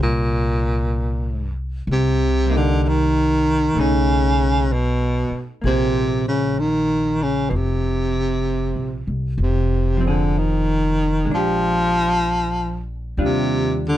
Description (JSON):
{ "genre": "jazz ballad", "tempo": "64 BPM", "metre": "4/4", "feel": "swing 66% on 8ths", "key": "F minor", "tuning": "A4 = 439 Hz", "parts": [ { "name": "breathy baritone saxophone", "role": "melody", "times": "0.0-14.0 s", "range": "Bb2 to F3", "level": "-20 LUFS", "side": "equal", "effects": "none" }, { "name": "vintage hollow-body jazz guitar", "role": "accompaniment", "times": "0.0-14.0 s", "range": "F3 to C5", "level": "-25 LUFS", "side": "equal", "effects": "none" }, { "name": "upright bass", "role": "bass", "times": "0.0-14.0 s", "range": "F1 to Eb2", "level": "-22 LUFS", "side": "equal", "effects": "none" } ], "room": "little or no reverb", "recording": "dark, warm production", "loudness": "-17 LUFS", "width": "side -13 dB against mid", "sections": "0.0-14.0 A section", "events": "none", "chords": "0.0 Fm7; 1.9 Cm7; 3.7 B13; 5.6 Bbsus2; 9.4 Fm7; 11.3 Bb6; 13.2 Ebmaj9" }